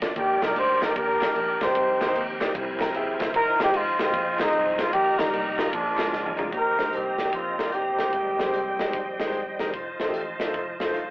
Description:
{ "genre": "uptempo gospel", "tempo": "151 BPM", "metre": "4/4", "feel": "swing 65% on 8ths", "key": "Eb major", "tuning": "A4 = 439 Hz", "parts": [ { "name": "clear grand piano", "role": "accompaniment", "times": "0.0-11.1 s", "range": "Ab2 to Bb5", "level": "-30 LUFS", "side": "equal", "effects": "none" }, { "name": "fingered electric bass", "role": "bass", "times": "0.0-11.1 s", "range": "Eb1 to Eb2", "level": "-42 LUFS", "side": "equal", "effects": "none" }, { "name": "modern studio drum kit", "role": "drums", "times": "0.0-11.1 s", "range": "hi-hat, kick drum, ride cymbal, snare drum, toms", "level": "-30 LUFS", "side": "equal", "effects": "none" }, { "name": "group handclap", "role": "percussion", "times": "0.0-6.5 s", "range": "none", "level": "-37 LUFS", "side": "left 1 dB", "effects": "none" }, { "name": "mellow horn section", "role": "melody", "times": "0.2-9.6 s", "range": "F3 to C5", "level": "-23 LUFS", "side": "equal", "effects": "none" }, { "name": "bright tonewheel organ", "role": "sustained chords", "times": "0.2-11.1 s", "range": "G3 to Bb5", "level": "-31 LUFS", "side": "right 1 dB", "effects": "fast rotary speaker, chorus vibrato" } ], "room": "moderate studio reverb, RT60 0.6 s", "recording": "rough rehearsal-room recording, tube saturation, telephone sound", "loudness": "-22 LUFS", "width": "side -21 dB against mid", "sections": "0.0-6.5 A section; 6.5-11.1 B section", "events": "grand piano fill 2.5-3.3; drum fill 6.1-6.5", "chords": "0.2 Ebmaj7; 1.8 Cm7; 2.5 C7b13; 3.3 Fm7; 4.9 Eb/Bb; 5.7 Bb7; 6.5 Eb6; 8.1 Abmaj7; 9.7 F7", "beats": "| 0.16 0.56 0.96 1.35 | 1.75 2.15 2.55 2.95 | 3.34 3.74 4.14 4.54 | 4.93 5.33 5.73 6.13 | 6.53 6.93 7.33 7.73 | 8.13 8.53 8.93 9.33 | 9.74 10.14 10.54 10.94" }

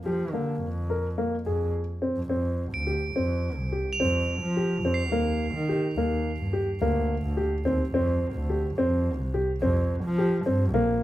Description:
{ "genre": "contemporary instrumental, chamber music in an uneven meter", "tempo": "107 BPM", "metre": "5/4", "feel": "straight", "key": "unclear", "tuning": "A4 = 439 Hz", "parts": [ { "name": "dark double bass", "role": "bass", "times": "0.0-11.0 s", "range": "Bb1 to F3", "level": "-28 LUFS", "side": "equal", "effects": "none" }, { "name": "dark baby grand piano", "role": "arpeggios", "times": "0.1-11.0 s", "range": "Bb3 to Bb4", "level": "-27 LUFS", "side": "equal", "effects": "none" }, { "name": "crotales", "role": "texture", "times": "2.7-5.4 s", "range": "C7 to F7", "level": "-34 LUFS", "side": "right 4 dB", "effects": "none" } ], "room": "light reverb", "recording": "close, detailed microphones", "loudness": "-24 LUFS", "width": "side -14 dB against mid", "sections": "0.0-2.3 A section; 2.3-11.0 B section", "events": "none", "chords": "0.0 Bb5/F; 2.3 Fsus2; 5.1 Ebmaj7; 7.9 Fsus2", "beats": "0.06 0.62 1.18 1.75 | 2.31 2.87 3.43 3.99 4.56 | 5.12 5.68 6.24 6.80 7.37 | 7.93 8.49 9.05 9.61 10.17 | 10.74" }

